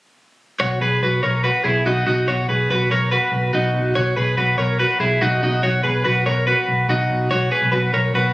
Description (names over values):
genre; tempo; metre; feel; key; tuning
jangly indie pop; 143 BPM; 4/4; straight; B major; A4 = 440 Hz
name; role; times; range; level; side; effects
twelve-string electric guitar; arpeggios; 0.6-8.3 s; D#4 to C#5; -18 LUFS; equal; tape echo, plate reverb
vintage muted picked electric bass; bass; 0.6-8.3 s; B1; -21 LUFS; equal; none
room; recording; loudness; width
moderate studio reverb, RT60 0.5 s; recorded on a phone in the room, studio ambience, compression; -16 LUFS; side -19 dB against mid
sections
0.6-7.3 A section; 7.3-8.3 B section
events
none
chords
0.6 B; 7.3 B5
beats
| 0.60 1.02 1.44 1.86 | 2.28 2.70 3.12 3.54 | 3.96 4.37 4.79 5.21 | 5.63 6.05 6.47 6.88 | 7.30 7.72 8.14